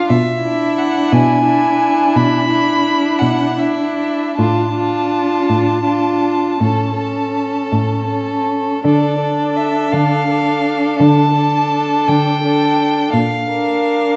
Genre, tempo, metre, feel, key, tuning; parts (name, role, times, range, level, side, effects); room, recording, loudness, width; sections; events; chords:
classical, slow romantic movement for string quartet; 55 BPM (dotted quarters); 12/8; uneven beats, rubato; D minor; A4 = 440 Hz
rich violin; melody; 0.0-14.2 s; D5 to B5; -22 LUFS; equal
rich violin; second line; 0.0-14.2 s; E4 to Bb4; -21 LUFS; equal
warm viola; accompaniment; 0.0-14.2 s; C#4 to D4; -21 LUFS; equal
warm cello; bass; 0.1-14.1 s; A2 to D3; -20 LUFS; equal
wet concert hall reverb, RT60 1.8 s; dark, warm production, vinyl crackle, nothing above 7.9 kHz; -16 LUFS; mono
0.0-14.2 A section
0.1 E7/B; 4.4 Dm/A; 6.6 A; 8.8 Dm; 13.1 Bb